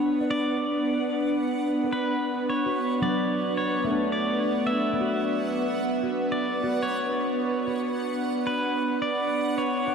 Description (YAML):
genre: ambient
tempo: 55 BPM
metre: 4/4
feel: straight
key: B minor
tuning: A4 = 440 Hz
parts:
  - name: pedal steel guitar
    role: melody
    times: 0.0-9.9 s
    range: B4 to E5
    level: -29 LUFS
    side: equal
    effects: diffuse ambient delay
  - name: warbly tape-like pad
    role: sustained chords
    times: 0.0-9.9 s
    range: B3 to F#5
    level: -27 LUFS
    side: equal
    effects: chorus, built-in reverb
  - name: bowed-like drone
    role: drone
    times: 0.0-9.9 s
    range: B3 to B4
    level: -33 LUFS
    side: right 3 dB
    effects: built-in reverb
  - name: backwards swelling texture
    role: texture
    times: 0.0-9.9 s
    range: F#5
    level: -40 LUFS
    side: right 4 dB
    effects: built-in reverb
  - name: concert harp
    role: arpeggios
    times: 0.2-9.9 s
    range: F#3 to F#5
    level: -33 LUFS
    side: left 2 dB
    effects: diffuse ambient delay
room: wet huge ambient reverb, RT60 7.7 s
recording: dark, warm production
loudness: -24 LUFS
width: side -6 dB against mid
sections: 0.0-9.9 A section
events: none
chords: 0.0 Bmadd9